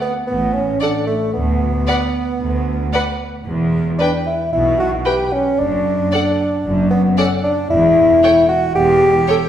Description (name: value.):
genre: cinematic, playful, whimsical film cue.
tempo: 113 BPM.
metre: 4/4.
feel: straight.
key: D major.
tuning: A4 = 440 Hz.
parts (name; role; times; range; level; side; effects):
mellow bassoon; accompaniment; 0.0-9.5 s; A3 to G4; -17 LUFS; equal; none.
mellow French horn section; sustained chords; 0.0-9.5 s; A3 to G4; -21 LUFS; left 2 dB; none.
rich chamber double bass section; bass; 0.3-9.2 s; E1 to D2; -22 LUFS; right 1 dB; none.
rich symphonic cello section; bass; 0.3-9.2 s; D2 to B2; -23 LUFS; right 1 dB; none.
rich chamber violin section; melody; 0.8-9.4 s; F#5 to G5; -27 LUFS; left 1 dB; none.
clear chamber violin section; second line; 0.8-9.4 s; B4 to D5; -26 LUFS; left 1 dB; none.
rich studio viola section; accompaniment; 0.8-9.4 s; A4 to B4; -25 LUFS; right 1 dB; none.
room: wet recital hall reverb, RT60 1.5 s.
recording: recorded in a church or concert hall.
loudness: -14 LUFS.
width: side -10 dB against mid.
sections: 0.0-9.5 A section.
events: none.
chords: 0.0 D5; 1.3 Bm/D; 3.5 Em; 5.6 D/F#; 7.7 A7(no3)/E (rootless).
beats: 0.28 0.81 | 1.34 1.88 2.41 2.94 | 3.46 4.00 4.52 5.05 | 5.58 6.12 6.64 7.17 | 7.70 8.22 8.75 9.28.